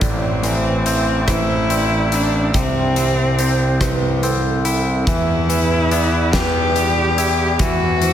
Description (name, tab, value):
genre	post-rock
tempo	48 BPM (dotted quarters)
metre	6/8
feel	straight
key	unclear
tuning	A4 = 440 Hz
part	bright cello	melody	0.0-8.1 s	C4 to G4	-21 LUFS	left 1 dB	analog delay
part	twangy electric guitar	arpeggios	0.0-8.1 s	A2 to E4	-23 LUFS	left 2 dB	analog delay
part	vibraphone with medium hard mallets	arpeggios	0.0-8.1 s	A4 to E5	-25 LUFS	right 5 dB	analog delay
part	fuzz picked electric bass	bass	0.0-8.1 s	A1 to E2	-19 LUFS	equal	overdrive
part	huge arena drum kit	drums	0.0-8.1 s	hi-hat, kick drum, rim click, snare drum	-23 LUFS	equal	none
room	light reverb, small room reverb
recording	none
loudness	-15 LUFS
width	side -10 dB against mid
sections	0.0-8.1 A section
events	none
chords	0.0 Am; 2.5 C; 5.1 Em